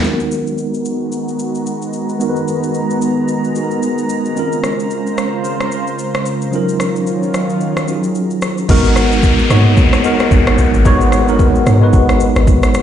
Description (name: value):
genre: amapiano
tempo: 111 BPM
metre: 4/4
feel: swing 58% on 16ths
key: G# dorian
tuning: A4 = 440 Hz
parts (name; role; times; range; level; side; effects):
- tine electric piano; accompaniment; 0.0-12.8 s; F#3 to C#5; -16 LUFS; equal; fast stereo tremolo, low-pass filter
- lush unison pad; sustained chords; 0.0-8.7 s; C#3 to A#5; -20 LUFS; right 1 dB; chorus, sidechain pumping, low-pass filter
- afro-pop drum kit; drums; 0.0-12.8 s; crash cymbal, kick drum, rim click, shaker; -17 LUFS; equal; none
- deep log drum bass; bass; 8.7-12.8 s; F#1 to G#2; -13 LUFS; equal; none
- downlifter; sound effects; 8.7-12.8 s; none; -21 LUFS; left 2 dB; none
room: light reverb, digital ambience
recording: played on a big sound system in a bare room, stone room reverb, nothing above 10.3 kHz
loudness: -12 LUFS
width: side -10 dB against mid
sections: 0.0-8.7 A section; 8.7-12.8 B section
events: filter sweep 0.0-8.7; drop 8.7-12.8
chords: 0.0 G#m9; 4.4 A#m9; 6.5 D#m9; 8.7 G#m9